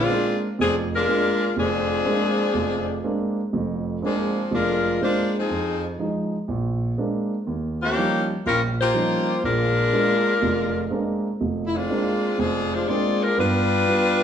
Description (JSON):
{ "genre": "jazz", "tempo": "122 BPM", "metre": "4/4", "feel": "swing 69% on 8ths", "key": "Bb mixolydian", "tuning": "A4 = 440 Hz", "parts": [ { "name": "warm saxophone section", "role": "melody", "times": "0.0-14.2 s", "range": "F3 to D5", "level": "-22 LUFS", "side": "left 2 dB", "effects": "none" }, { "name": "warm grand piano", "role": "accompaniment", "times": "0.0-14.2 s", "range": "F1 to F4", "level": "-24 LUFS", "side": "right 2 dB", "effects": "none" } ], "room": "wet large studio reverb, RT60 1.2 s", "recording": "heard from further back in the room", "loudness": "-20 LUFS", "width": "side -8 dB against mid", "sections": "0.0-14.2 A section", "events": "none", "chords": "0.0 Bb9; 5.5 Fm7; 6.5 Bb9; 7.5 Eb9; 9.4 Bb9; 13.4 G7", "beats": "0.09 0.58 1.07 | 1.56 2.06 2.55 3.04 | 3.53 4.02 4.51 5.01 | 5.50 5.99 6.48 6.97 | 7.47 7.96 8.45 8.94 | 9.43 9.93 10.42 10.91 | 11.40 11.89 12.39 12.88 | 13.37 13.86" }